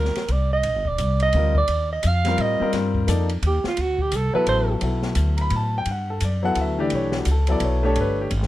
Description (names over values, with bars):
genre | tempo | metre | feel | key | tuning
modal jazz | 172 BPM | 3/4 | swing 62% on 8ths | Eb lydian, G lydian from 4.8 s | A4 = 441 Hz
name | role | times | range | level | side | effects
breathy alto saxophone | melody | 0.0-4.7 s | F4 to F5 | -23 LUFS | right 4 dB | none
warm concert grand piano | accompaniment | 0.0-8.3 s | E3 to B5 | -24 LUFS | left 3 dB | none
upright bass | bass | 0.0-8.5 s | Eb1 to A2 | -22 LUFS | equal | none
open jazz drum kit | drums | 0.1-8.5 s | hi-hat, kick drum, ride cymbal, snare drum | -31 LUFS | left 1 dB | none
room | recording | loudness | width
little or no reverb | close, detailed microphones | -19 LUFS | side -15 dB against mid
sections
0.0-4.8 A section; 4.8-8.5 A section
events
alto saxophone solo 0.0-4.8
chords
0.0 Ebmaj9; 3.8 D7; 4.8 Gmaj9